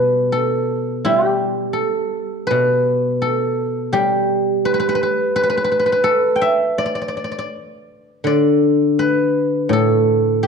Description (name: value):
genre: chinese traditional, Chinese solo plucked strings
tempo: 84 BPM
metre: 2/4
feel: rubato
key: unclear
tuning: A4 = 441 Hz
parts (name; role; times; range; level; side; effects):
- guzheng; solo; 0.0-10.5 s; A2 to G5; -15 LUFS; equal; none
room: moderate recital hall reverb, RT60 1.4 s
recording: dark, warm production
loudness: -15 LUFS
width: side -5 dB against mid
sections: 0.0-8.3 A section; 8.3-10.5 B section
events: none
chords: none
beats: 0.36 | 1.08 1.79 | 2.52 3.25 | 3.96 4.68 | 5.38 6.08 | 6.78 7.51 | 8.26 8.99 | 9.70 10.41